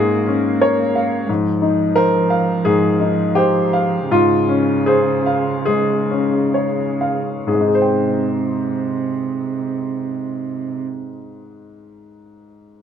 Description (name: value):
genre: neoclassical piano and strings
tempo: 65-90 BPM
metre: 4/4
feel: rubato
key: Ab major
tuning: A4 = 440 Hz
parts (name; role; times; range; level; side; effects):
- muted cello; second line; 0.0-10.8 s; C3 to Bb3; -22 LUFS; right 6 dB; none
- bright upright piano; accompaniment; 0.0-12.8 s; Ab2 to G5; -16 LUFS; left 2 dB; none
room: little or no reverb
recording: close, detailed microphones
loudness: -15 LUFS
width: side -8 dB against mid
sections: 0.0-7.5 A section; 7.5-11.1 B section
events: slowing down 0.0-7.5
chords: 0.0 Bbm7/Ab; 1.3 Fm7/Ab; 4.1 Dbmaj7/Ab; 7.5 Abmaj7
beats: 0.61 | 1.28 1.96 2.65 3.36 | 4.10 4.87 5.67 6.55 | 7.47 8.38 9.29 10.19